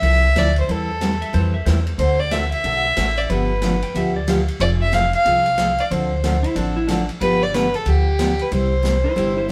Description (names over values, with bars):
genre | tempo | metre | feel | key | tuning
country, western swing | 184 BPM | 4/4 | swing 62% on 8ths | C major | A4 = 440 Hz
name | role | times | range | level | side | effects
dark fiddle | melody | 0.0-9.5 s | G4 to F5 | -22 LUFS | equal | none
picked steel-string acoustic guitar | accompaniment | 0.0-9.5 s | C3 to B4 | -26 LUFS | equal | none
upright bass | bass | 0.0-9.5 s | F1 to F2 | -23 LUFS | equal | none
swinging big-band drum kit | drums | 0.0-9.3 s | hi-hat, ride cymbal, snare drum | -32 LUFS | equal | none
clean lap steel guitar | second line | 1.2-9.5 s | D4 to G5 | -29 LUFS | equal | none
room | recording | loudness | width
light reverb | band playing live in one room | -19 LUFS | mono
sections
0.0-9.5 A section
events
none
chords
0.0 Fmaj7; 0.7 Cmaj7/E; 2.0 D7; 3.3 G7; 4.6 Fm; 5.9 Dm7; 7.2 G7; 8.5 Cmaj7